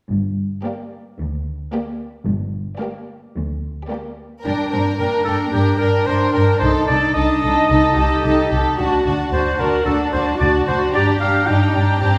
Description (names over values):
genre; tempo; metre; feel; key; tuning
quick classical-period movement for symphony orchestra; 111 BPM; 4/4; straight; G minor; A4 = 441 Hz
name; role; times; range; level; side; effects
warm studio cello section; bass; 0.1-12.2 s; D2 to G4; -26 LUFS; equal; none
warm studio double bass section; bass; 0.1-12.1 s; G1 to G2; -23 LUFS; equal; none
clear studio violin section; second line; 0.6-12.2 s; F#4 to Bb4; -27 LUFS; equal; none
dark studio violin section; melody; 0.7-12.2 s; D5 to Bb5; -31 LUFS; equal; none
dark studio viola section; accompaniment; 0.7-12.2 s; Bb3 to Eb4; -25 LUFS; equal; none
warm oboe; second line; 5.0-12.2 s; G4 to G5; -22 LUFS; equal; none
room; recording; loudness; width
wet recital hall reverb, RT60 1.3 s; heard from further back in the room; -18 LUFS; mono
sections
0.1-4.4 A section; 4.4-12.2 B section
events
none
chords
0.1 Gm; 6.6 Adim/C; 8.8 D; 10.9 Gm